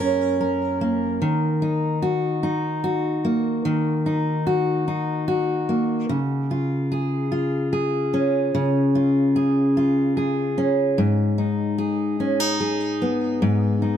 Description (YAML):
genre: pop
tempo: 49 BPM (dotted quarters)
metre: 6/8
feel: straight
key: unclear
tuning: A4 = 438 Hz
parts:
  - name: fingerpicked steel-string acoustic guitar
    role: solo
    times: 0.0-14.0 s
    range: F#2 to A#4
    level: -20 LUFS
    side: equal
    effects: digital delay
room: light reverb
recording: none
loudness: -20 LUFS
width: side -9 dB against mid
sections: 0.0-14.0 A section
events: none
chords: 0.0 F#; 1.2 D#m; 6.1 C#; 11.0 G#m